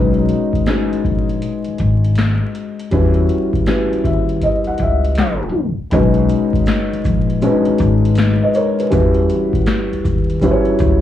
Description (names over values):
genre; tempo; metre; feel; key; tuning
lo-fi hip hop; 80 BPM; 4/4; swing 66% on 16ths; B major; A4 = 441 Hz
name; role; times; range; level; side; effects
felt-muted upright piano; accompaniment; 0.0-11.0 s; G3 to B5; -17 LUFS; left 1 dB; cassette tape, low-pass filter
upright bass; bass; 0.0-11.0 s; G#1 to E2; -18 LUFS; left 2 dB; none
booming analog drum machine; drums; 0.1-11.0 s; handclaps, hi-hat, kick drum, snare drum; -19 LUFS; left 1 dB; none
egg shaker; percussion; 5.9-11.0 s; none; -52 LUFS; left 10 dB; none
room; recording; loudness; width
small room ambience; worn, warbling old tape, cassette tape, vinyl crackle, warbly pitch drift, tape stop; -14 LUFS; side -12 dB against mid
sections
0.0-5.9 A section; 5.9-11.0 B section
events
felt piano fill 3.7-5.9; tape stop 5.2-5.9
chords
0.0 B6; 2.9 Em6; 5.9 B6; 8.9 Em6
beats
0.67 1.42 2.17 | 2.92 3.67 4.42 5.17 | 5.92 6.67 7.42 8.17 | 8.92 9.67 10.42